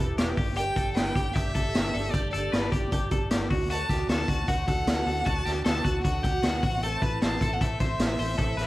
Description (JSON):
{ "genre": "jangly indie pop", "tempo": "154 BPM", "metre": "4/4", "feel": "straight", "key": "unclear", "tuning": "A4 = 440 Hz", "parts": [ { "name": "picked twelve-string acoustic guitar", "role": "accompaniment", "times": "0.0-8.7 s", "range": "A2 to G4", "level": "-35 LUFS", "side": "right 4 dB", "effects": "ensemble chorus" }, { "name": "twelve-string electric guitar", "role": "arpeggios", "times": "0.0-8.7 s", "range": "F#4 to C5", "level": "-34 LUFS", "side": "left 4 dB", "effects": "spring reverb, slapback echo" }, { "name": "vintage muted fingered electric bass", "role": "bass", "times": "0.0-8.7 s", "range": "E1 to D2", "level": "-32 LUFS", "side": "equal", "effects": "none" }, { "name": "raw garage drum kit", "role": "drums", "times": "0.2-8.7 s", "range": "hi-hat, kick drum, snare drum", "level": "-27 LUFS", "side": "equal", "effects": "gated reverb" }, { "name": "clear violin", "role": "melody", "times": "0.6-8.7 s", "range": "D5 to A5", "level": "-32 LUFS", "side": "equal", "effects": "none" } ], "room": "light reverb", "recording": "vinyl crackle", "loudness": "-24 LUFS", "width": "side -17 dB against mid", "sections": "0.0-8.7 A section", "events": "none", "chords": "0.4 Gsus2; 3.5 D; 6.6 Am", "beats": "0.18 | 0.57 0.97 1.36 1.75 | 2.14 2.53 2.92 3.31 | 3.70 4.09 4.49 4.88 | 5.26 5.66 6.04 6.43 | 6.82 7.21 7.60 7.99 | 8.38" }